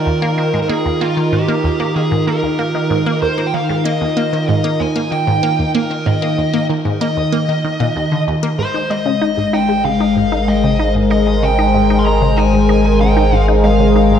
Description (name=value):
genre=ambient, sequencer-driven space music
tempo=95 BPM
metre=4/4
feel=straight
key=Eb major, Ab major from 8.6 s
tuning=A4 = 441 Hz
part: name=dark smooth lead guitar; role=melody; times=0.0-14.2 s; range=F4 to C6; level=-20 LUFS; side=equal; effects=overdrive, shimmer reverb, ping-pong delay
part: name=sweeping resonant pad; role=sustained chords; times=0.0-14.2 s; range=Eb3 to Bb5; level=-16 LUFS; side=left 1 dB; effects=chorus, shimmer reverb
part: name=resonant blip pluck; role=riff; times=0.1-14.2 s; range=Eb2 to Eb4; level=-20 LUFS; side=equal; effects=phaser, shimmer reverb, ping-pong delay
part: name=round analog bass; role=bass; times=8.6-14.2 s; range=Ab1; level=-17 LUFS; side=equal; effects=none
room=moderate plate reverb, RT60 2.5 s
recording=dreamy mix soaked in reverb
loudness=-13 LUFS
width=side -8 dB against mid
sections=0.0-8.6 A section; 8.6-14.2 B section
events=none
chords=0.0 Ebsus2; 8.6 Abadd9